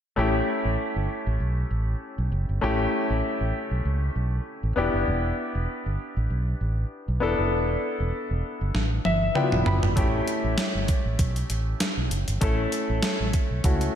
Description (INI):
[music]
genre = 1980s-style pop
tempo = 98 BPM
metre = 4/4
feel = swing 55% on 16ths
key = unclear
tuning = A4 = 439 Hz
[part]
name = clear concert grand piano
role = accompaniment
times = 0.2-14.0 s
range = F#3 to B5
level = -27 LUFS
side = left 2 dB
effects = slapback echo
[part]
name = fretless electric bass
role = bass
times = 0.2-13.9 s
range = E1 to C#2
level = -26 LUFS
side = right 1 dB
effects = analog chorus
[part]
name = clean 12-bit digital drum machine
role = drums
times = 8.7-13.9 s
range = hi-hat, kick drum, snare drum, toms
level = -25 LUFS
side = equal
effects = overdrive
[sound]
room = moderate lush hall reverb, RT60 2.6 s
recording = big arena sound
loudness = -23 LUFS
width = side -9 dB against mid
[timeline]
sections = 0.2-14.0 A section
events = drum fill 8.7-10.0; grand piano fill 8.7-10.0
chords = 0.2 A7; 4.8 Em7; 10.0 A7